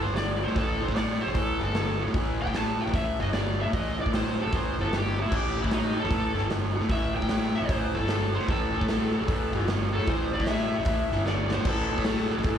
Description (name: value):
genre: blues rock power trio and southern rock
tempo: 151 BPM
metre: 4/4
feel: swing 65% on 8ths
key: A minor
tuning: A4 = 441 Hz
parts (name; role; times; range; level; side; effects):
- overdriven slide guitar; melody; 0.0-12.6 s; D#4 to A5; -31 LUFS; left 1 dB; plate reverb, analog delay
- raw garage guitar; riff; 0.0-12.6 s; A2 to F#3; -30 LUFS; right 1 dB; overdrive, slapback echo
- fuzz picked electric bass; bass; 0.0-12.6 s; G1 to A2; -29 LUFS; equal; overdrive
- big rock drum kit; drums; 0.2-12.6 s; crash cymbal, hi-hat, kick drum, snare drum; -30 LUFS; equal; none
room: light reverb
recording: live gig heard through the venue's PA, club reverb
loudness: -24 LUFS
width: side -9 dB against mid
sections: 0.0-12.6 A section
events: electric slide guitar solo 0.0-12.6; drum fill 11.3-11.7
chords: 0.0 A5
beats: 0.17 | 0.56 0.96 1.36 1.75 | 2.15 2.55 2.94 3.34 | 3.73 4.13 4.53 4.92 | 5.32 5.71 6.11 6.51 | 6.90 7.30 7.70 8.09 | 8.49 8.88 9.28 9.68 | 10.07 10.47 10.87 11.27 | 11.66 12.06 12.46